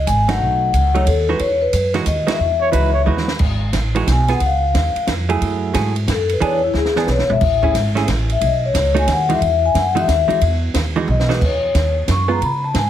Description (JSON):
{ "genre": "jazz, small-group swing and bop", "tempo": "180 BPM", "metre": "3/4", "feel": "swing 64% on 8ths", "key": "E major", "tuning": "A4 = 440 Hz", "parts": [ { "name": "vibraphone with medium mallets", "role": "melody", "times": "0.0-12.9 s", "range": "E4 to C#6", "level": "-18 LUFS", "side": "left 4 dB", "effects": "plate reverb" }, { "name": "upright bass", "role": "bass", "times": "0.0-12.9 s", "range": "E1 to C#3", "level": "-19 LUFS", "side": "right 1 dB", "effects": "none" }, { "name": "compact cocktail drum kit", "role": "drums", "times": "0.1-12.8 s", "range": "crash cymbal, hi-hat, kick drum, ride cymbal, snare drum, toms", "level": "-24 LUFS", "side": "right 2 dB", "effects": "none" }, { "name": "hollow-body jazz guitar", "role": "accompaniment", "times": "0.3-12.4 s", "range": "E3 to G#4", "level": "-22 LUFS", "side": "right 5 dB", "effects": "none" }, { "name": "breathy trumpet", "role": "second line", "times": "2.6-3.4 s", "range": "B4 to C#5", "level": "-22 LUFS", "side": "right 4 dB", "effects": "none" } ], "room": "moderate large studio reverb, RT60 0.9 s", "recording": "heavily compressed radio sound, multiband compression", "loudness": "-15 LUFS", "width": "side -11 dB against mid", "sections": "0.0-3.4 A section; 3.4-11.4 B section; 11.4-12.9 B section", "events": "band accent 0.2, 2.2; drum fill 3.1-3.4, 6.7-7.4, 11.1-11.4; vibraphone solo 3.4-12.9", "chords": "0.4 B7; 1.4 Emaj9; 3.4 E (rootless); 4.4 C#; 5.4 F#m9; 6.4 E7; 7.4 Amaj7; 8.4 B; 9.4 Emaj9" }